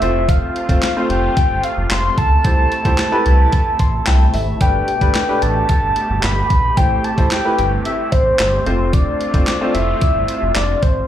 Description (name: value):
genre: dance-pop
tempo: 111 BPM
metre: 4/4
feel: straight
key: unclear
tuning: A4 = 439 Hz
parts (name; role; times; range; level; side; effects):
- soft octave-layered synth lead; melody; 0.0-11.1 s; C5 to C6; -19 LUFS; left 1 dB; chorus, ping-pong delay, slapback echo
- clear grand piano; accompaniment; 0.0-10.3 s; A3 to C6; -22 LUFS; left 1 dB; sidechain pumping, slapback echo
- filtered supersaw swell; sustained chords; 0.0-11.1 s; B2 to G4; -27 LUFS; right 2 dB; sidechain pumping
- sub bass with octave; bass; 0.0-11.0 s; F1 to Db2; -18 LUFS; equal; sidechain pumping
- crisp 8-bit digital drum machine; drums; 0.0-11.0 s; handclaps, hi-hat, kick drum, snare drum; -18 LUFS; equal; none
room: digital ambience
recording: live gig heard through the venue's PA, club reverb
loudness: -14 LUFS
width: side -11 dB against mid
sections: 0.0-11.1 A section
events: grand piano fill 3.5-4.6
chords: 0.0 F; 2.4 C6; 4.6 Gadd9; 6.8 Am7; 8.7 F